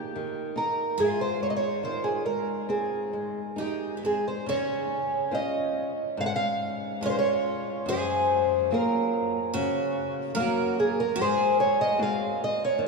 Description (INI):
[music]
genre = fado-style ballad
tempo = 71 BPM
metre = 4/4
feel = uneven beats, rubato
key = Ab major, Db major from 4.5 s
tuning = A4 = 439 Hz
[part]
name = fingerpicked twelve-string acoustic guitar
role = melody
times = 0.0-12.8 s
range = Gb4 to Gb5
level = -27 LUFS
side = right 1 dB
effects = none
[part]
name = picked twelve-string acoustic guitar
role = second line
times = 0.0-12.9 s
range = Cb4 to Bb4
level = -32 LUFS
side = right 2 dB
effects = none
[part]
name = flamenco guitar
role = accompaniment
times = 0.0-12.9 s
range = Gb2 to F5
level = -31 LUFS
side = left 1 dB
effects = none
[sound]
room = wet cathedral reverb, RT60 5.8 s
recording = recorded in a church or concert hall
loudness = -24 LUFS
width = side -3 dB against mid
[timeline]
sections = 0.0-4.5 A section; 4.5-12.9 B section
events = none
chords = 0.0 Eb; 1.0 Ab; 4.5 Dbmaj7; 7.9 Gbmaj7; 11.2 Ab7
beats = 0.17 | 1.00 1.83 2.69 3.58 | 4.48 5.33 6.18 7.03 | 7.88 8.71 9.54 10.36 | 11.17 11.98 12.79